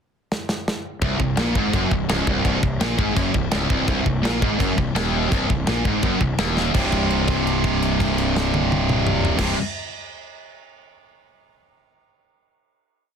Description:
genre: heavy metal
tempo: 168 BPM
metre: 4/4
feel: straight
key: C phrygian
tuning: A4 = 440 Hz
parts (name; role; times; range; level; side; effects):
- tight metal drum kit; drums; 0.3-9.5 s; crash cymbal, kick drum, snare drum, toms; -24 LUFS; equal; soft clipping on snare
- high-gain distorted guitar; riff; 1.0-9.6 s; C2 to C3; -24 LUFS; left 13 dB; distortion
- tight distorted guitar; riff; 1.0-9.6 s; C2 to C3; -23 LUFS; right 12 dB; distortion
- fuzz fingered electric bass; bass; 1.0-9.5 s; C1 to Bb1; -26 LUFS; equal; overdrive
room: small room ambience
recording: dense, heavily limited modern master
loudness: -18 LUFS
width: side -7 dB against mid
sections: 0.0-1.0 pickup bar; 1.0-6.8 riff; 6.8-9.6 final chord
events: drum fill 0.3-1.0, 6.6; held note 6.8-9.4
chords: 0.0 N.C.; 1.0 Cm; 6.8 C5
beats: 0.32 0.68 | 1.03 1.39 1.74 2.10 | 2.46 2.81 3.17 3.53 | 3.89 4.25 4.60 4.96 | 5.32 5.68 6.04 6.40 | 6.75 7.11 7.47 7.83 | 8.18 8.54 8.89 9.25

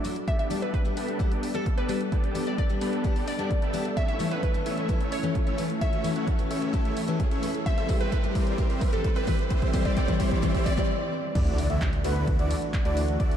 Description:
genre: EDM, festival progressive house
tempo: 130 BPM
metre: 4/4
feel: straight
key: D major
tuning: A4 = 440 Hz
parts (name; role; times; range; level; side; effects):
- picked steel-string acoustic guitar; accompaniment; 0.0-10.9 s; E3 to A4; -33 LUFS; left 4 dB; sidechain pumping, diffuse ambient delay
- lush unison pad; sustained chords; 0.0-13.4 s; E3 to A4; -35 LUFS; equal; chorus, sidechain pumping
- big supersaw lead; riff; 0.0-13.4 s; G3 to G5; -33 LUFS; equal; sidechain pumping, low-pass filter, diffuse ambient delay
- big-room dance drum kit; drums; 0.0-13.4 s; crash cymbal, handclaps, hi-hat, ride cymbal; -42 LUFS; left 1 dB; none
- riser and impact; sound effects; 0.8-13.2 s; none; -37 LUFS; right 1 dB; none
- glassy wavetable pluck; melody; 0.3-10.9 s; A4 to E5; -34 LUFS; right 1 dB; chorus, diffuse ambient delay
- electronic kick drum; drums; 0.3-13.3 s; none; -26 LUFS; equal; none
- wide unison lead; arpeggios; 11.4-13.4 s; B4 to E5; -33 LUFS; right 1 dB; sidechain pumping, diffuse ambient delay
- detuned saw bass; bass; 11.4-13.4 s; D2; -27 LUFS; equal; sidechain pumping
room: moderate cathedral reverb, RT60 5.5 s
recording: dreamy mix soaked in reverb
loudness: -24 LUFS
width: side -9 dB against mid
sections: 0.0-11.4 A section; 11.4-13.4 B section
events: build-up 0.0-11.4; filter sweep on analog synth pad 0.0-11.4; riser 0.8-10.9; drum fill 4.0-10.9; stop 10.9-11.4; drop 11.4-13.4; impact 11.4-13.2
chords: 0.3 Gadd9; 4.0 A; 7.7 C; 11.4 Dadd9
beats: | 0.28 0.74 1.20 1.66 | 2.12 2.58 3.05 3.51 | 3.97 4.43 4.89 5.35 | 5.82 6.28 6.74 7.20 | 7.66 8.12 8.58 9.05 | 9.51 9.97 10.43 10.89 | 11.35 11.81 12.28 12.74 | 13.20

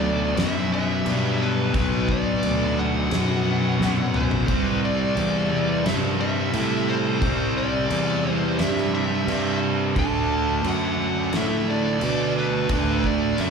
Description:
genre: stoner and doom metal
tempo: 88 BPM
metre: 4/4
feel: straight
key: unclear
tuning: A4 = 440 Hz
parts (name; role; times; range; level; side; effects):
- fuzz lead guitar; melody; 0.0-13.5 s; B4 to A5; -28 LUFS; left 1 dB; distortion, slapback echo, analog delay
- distorted electric guitar; riff; 0.0-13.5 s; B2 to D4; -30 LUFS; left 1 dB; overdrive, slapback echo
- thick fuzz guitar; riff; 0.0-13.5 s; B2 to D4; -28 LUFS; left 8 dB; distortion
- thick fuzz guitar; riff; 0.0-13.5 s; B2 to D4; -27 LUFS; right 10 dB; distortion, slapback echo
- fuzz fingered electric bass; bass; 0.0-13.5 s; B1 to B2; -26 LUFS; equal; overdrive
- oversized low-tuned drum kit; drums; 0.4-13.5 s; crash cymbal, kick drum, snare drum, toms; -29 LUFS; equal; none
room: studio reverb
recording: live gig heard through the venue's PA, club reverb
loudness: -20 LUFS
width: side -6 dB against mid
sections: 0.0-13.5 A section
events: drum fill 3.8-4.5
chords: 0.0 Bm; 4.5 C; 10.0 D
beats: 0.38 1.06 | 1.75 2.43 3.11 3.80 | 4.48 5.17 5.85 6.53 | 7.22 7.90 8.59 9.27 | 9.96 10.64 11.33 12.01 | 12.70 13.38

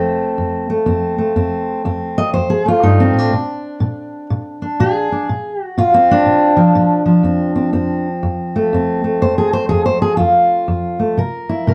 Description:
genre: acoustic country blues, solo or duo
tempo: 122 BPM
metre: 4/4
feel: swing 63% on 8ths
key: F major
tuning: A4 = 441 Hz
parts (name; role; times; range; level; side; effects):
- fingerpicked steel-string acoustic guitar; solo; 0.0-11.7 s; F2 to Eb5; -16 LUFS; equal; none
room: moderate studio reverb, RT60 0.6 s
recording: dark, warm production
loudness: -16 LUFS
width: mono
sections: 0.0-11.7 A section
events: none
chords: 0.0 F7; 3.3 Bb7; 7.2 F; 11.2 C7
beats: 0.37 0.86 | 1.35 1.84 2.34 2.83 | 3.32 3.81 4.30 4.79 | 5.29 5.78 6.27 6.76 | 7.25 7.74 8.23 8.72 | 9.21 9.70 10.19 10.68 | 11.17 11.66

